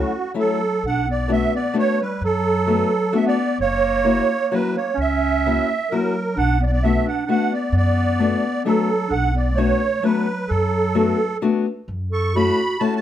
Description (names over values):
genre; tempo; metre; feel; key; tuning
musette waltz; 130 BPM; 3/4; straight; B minor; A4 = 439 Hz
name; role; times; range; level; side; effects
musette accordion; melody; 0.0-13.0 s; F#4 to C#6; -22 LUFS; right 4 dB; plate reverb
mellow clarinet; second line; 0.0-13.0 s; F#3 to A4; -25 LUFS; right 2 dB; none
fingerpicked acoustic archtop guitar; accompaniment; 0.0-13.0 s; F#3 to F#4; -21 LUFS; left 5 dB; none
upright bass; bass; 0.8-12.5 s; F#1 to F#2; -22 LUFS; equal; none
room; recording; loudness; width
moderate studio reverb, RT60 0.6 s; none; -18 LUFS; side -11 dB against mid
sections
0.8-11.9 A section; 11.9-13.0 B section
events
none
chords
0.0 F#m7; 0.8 Bm7; 3.6 F#7; 6.4 Bm7; 11.9 F#m7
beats
0.34 | 0.81 1.28 1.74 | 2.20 2.66 3.12 | 3.58 4.04 4.50 | 4.97 5.43 5.89 | 6.36 6.82 7.28 | 7.74 8.19 8.65 | 9.10 9.56 10.02 | 10.48 10.94 11.41 | 11.88 12.34 12.81